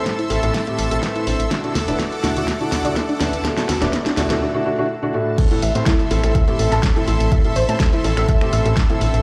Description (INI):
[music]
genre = progressive house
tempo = 124 BPM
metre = 4/4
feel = straight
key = unclear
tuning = A4 = 439 Hz
[part]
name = supersaw pad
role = sustained chords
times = 0.0-9.2 s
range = A4 to E6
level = -30 LUFS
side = equal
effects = sidechain pumping
[part]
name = fat analog bass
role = bass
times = 0.0-9.2 s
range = D1 to A2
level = -24 LUFS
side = equal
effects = sidechain pumping
[part]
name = backwards swelling texture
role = texture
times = 0.0-4.4 s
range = A4 to A5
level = -38 LUFS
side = equal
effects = none
[part]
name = felt-muted upright piano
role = stabs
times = 0.1-9.2 s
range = A2 to C5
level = -24 LUFS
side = equal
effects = sidechain pumping, tape echo
[part]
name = electronic kick drum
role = drums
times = 0.1-8.9 s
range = none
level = -20 LUFS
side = equal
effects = high-pass filter on kick, high-pass filter on room
[part]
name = pop drum kit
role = drums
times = 0.1-9.2 s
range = crash cymbal, finger snaps, hi-hat, snare drum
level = -27 LUFS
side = equal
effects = none
[part]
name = soft round pluck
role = arpeggios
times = 0.2-9.2 s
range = D4 to E6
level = -29 LUFS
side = equal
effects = ensemble chorus, sidechain pumping, tape echo
[sound]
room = light reverb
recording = played on a big sound system in a bare room, large studio reverb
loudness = -19 LUFS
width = mono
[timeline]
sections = 0.0-5.4 A section; 5.4-9.2 B section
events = build-up 0.0-5.4; drum fill 0.0-4.4; filter sweep on synth pluck 0.0-5.4; drop 5.4-9.2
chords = 0.0 Am; 1.5 Dadd9; 5.4 Am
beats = 0.06 0.54 1.03 | 1.51 2.00 2.48 2.96 | 3.45 3.93 4.41 4.90 | 5.38 5.87 6.35 6.83 | 7.32 7.80 8.29 8.77